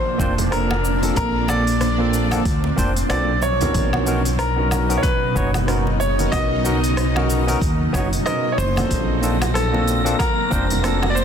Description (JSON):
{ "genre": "sunset chillout", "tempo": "93 BPM", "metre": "4/4", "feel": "swing 58% on 16ths", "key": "unclear", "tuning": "A4 = 440 Hz", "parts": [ { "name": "clear concert grand piano", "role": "melody", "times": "0.0-11.2 s", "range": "A4 to D#5", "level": "-24 LUFS", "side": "equal", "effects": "tape echo" }, { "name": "shimmering ambient pad", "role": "sustained chords", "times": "0.0-11.2 s", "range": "Bb2 to D#4", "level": "-24 LUFS", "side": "equal", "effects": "chorus, built-in reverb, phaser" }, { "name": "barky tine electric piano", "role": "accompaniment", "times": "0.2-11.1 s", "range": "Bb3 to C#5", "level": "-25 LUFS", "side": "moving between left 4 dB and right 2 dB", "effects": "overdrive, auto-pan, ping-pong delay" }, { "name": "upright bass", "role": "bass", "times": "0.2-11.2 s", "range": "F1 to D#2", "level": "-22 LUFS", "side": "equal", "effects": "none" }, { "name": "deep house drum kit", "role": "drums", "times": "0.2-11.2 s", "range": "hi-hat, rim click, shaker, woodblock", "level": "-29 LUFS", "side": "left 1 dB", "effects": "none" }, { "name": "electronic kick drum", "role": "drums", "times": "0.2-10.7 s", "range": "none", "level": "-24 LUFS", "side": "equal", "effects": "none" }, { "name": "congas", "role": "percussion", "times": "0.2-11.1 s", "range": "none", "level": "-31 LUFS", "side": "right 2 dB", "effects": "none" }, { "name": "wind-like tuned noise texture", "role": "texture", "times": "9.1-11.2 s", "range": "Bb6", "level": "-29 LUFS", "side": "right 4 dB", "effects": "built-in reverb" } ], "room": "light reverb, digital ambience", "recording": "dense, heavily limited modern master", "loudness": "-17 LUFS", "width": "side -8 dB against mid", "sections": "0.0-11.2 A section", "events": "none", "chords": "0.0 Bbmaj9; 3.4 Bmaj9; 8.9 Bbmaj9" }